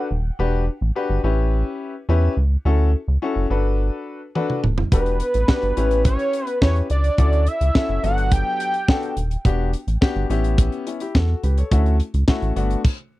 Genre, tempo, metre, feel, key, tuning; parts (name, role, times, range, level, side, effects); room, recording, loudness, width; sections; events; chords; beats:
early-eighties boogie funk; 106 BPM; 4/4; straight; A4 = 440 Hz
fat analog lead; melody; 0.0-0.1, 4.9-9.1 s; B4 to G5; -23 LUFS; right 1 dB
clear concert grand piano; accompaniment; 0.0-12.8 s; F#3 to C#5; -25 LUFS; left 4 dB
rubbery square bass; bass; 0.1-12.8 s; D#1 to E2; -19 LUFS; equal
tight funk drum kit; drums; 4.4-13.0 s; crash cymbal, hi-hat, kick drum, snare drum, toms; -18 LUFS; equal
little or no reverb; dry, close 1970s-style studio recording; -18 LUFS; side -18 dB against mid
0.0-13.2 A section
drum fill 4.4-4.9
0.4 Em7; 1.2 A7; 2.7 Dmaj7; 3.5 Gmaj7; 4.9 Em7; 5.8 A7; 7.2 Dmaj7; 8.0 Gmaj7; 9.4 Em7; 10.3 A7; 11.7 Dmaj7; 12.6 Gmaj7
| 0.39 0.96 1.52 2.09 | 2.66 3.22 3.79 4.35 | 4.92 5.49 6.05 6.62 | 7.18 7.75 8.32 8.88 | 9.45 10.01 10.58 11.15 | 11.71 12.28 12.84